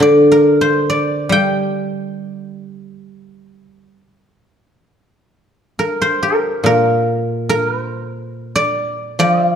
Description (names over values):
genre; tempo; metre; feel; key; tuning
chinese traditional, Chinese solo plucked strings; 63-73 BPM; 4/4; rubato; G yu mode; A4 = 439 Hz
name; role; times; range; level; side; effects
guzheng; solo; 0.0-9.6 s; Bb2 to G5; -14 LUFS; equal; none
room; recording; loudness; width
moderate scoring stage reverb, RT60 1.6 s; dark, warm production; -14 LUFS; side -8 dB against mid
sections
0.0-5.3 A section; 5.3-9.6 B section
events
none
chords
none